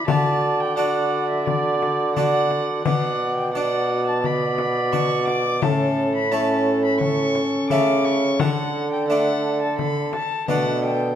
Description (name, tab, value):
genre	classical, renaissance-style consort dance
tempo	86 BPM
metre	4/4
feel	straight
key	unclear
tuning	A4 = 439 Hz
part	warm violin	melody	0.0-11.2 s	D5 to D6	-28 LUFS	left 3 dB	none
part	warm viola	second line	0.0-11.2 s	A4 to D5	-27 LUFS	right 5 dB	none
part	clear trombone	accompaniment	0.0-11.2 s	C#4 to F#4	-26 LUFS	left 2 dB	none
part	harpsichord	accompaniment	0.1-11.1 s	A2 to D5	-26 LUFS	equal	none
part	mellow bassoon	bass	0.1-11.2 s	A2 to D3	-24 LUFS	right 2 dB	none
part	frame drum	percussion	0.1-11.2 s	none	-26 LUFS	left 6 dB	none
room	wet recital hall reverb, RT60 1.4 s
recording	none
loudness	-19 LUFS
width	side -10 dB against mid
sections	0.0-11.2 A section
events	none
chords	0.1 D; 2.9 Bm; 5.6 A; 8.4 D5